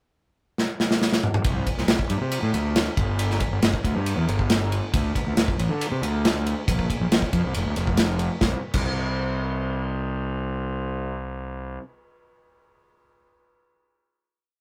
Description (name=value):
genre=math rock and midwest emo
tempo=138 BPM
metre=4/4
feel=straight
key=unclear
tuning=A4 = 440 Hz
part: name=modern studio drum kit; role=drums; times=0.6-8.9 s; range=crash cymbal, kick drum, ride cymbal, snare drum, toms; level=-26 LUFS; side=equal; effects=none
part: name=fuzz fingered electric bass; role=bass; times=1.4-11.8 s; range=F1 to D3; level=-27 LUFS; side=equal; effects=overdrive
room=light reverb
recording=rough rehearsal-room recording, warm saturation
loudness=-24 LUFS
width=mono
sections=0.0-1.4 pickup bar; 1.4-8.4 A section; 8.4-11.9 final note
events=drum fill 0.6-1.4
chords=none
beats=0.14 0.57 1.01 | 1.44 1.88 2.31 2.75 | 3.19 3.62 4.06 4.50 | 4.93 5.37 5.80 6.24 | 6.68 7.11 7.55 7.99 | 8.42 8.86 9.29 9.72 | 10.16 10.59 11.03 11.46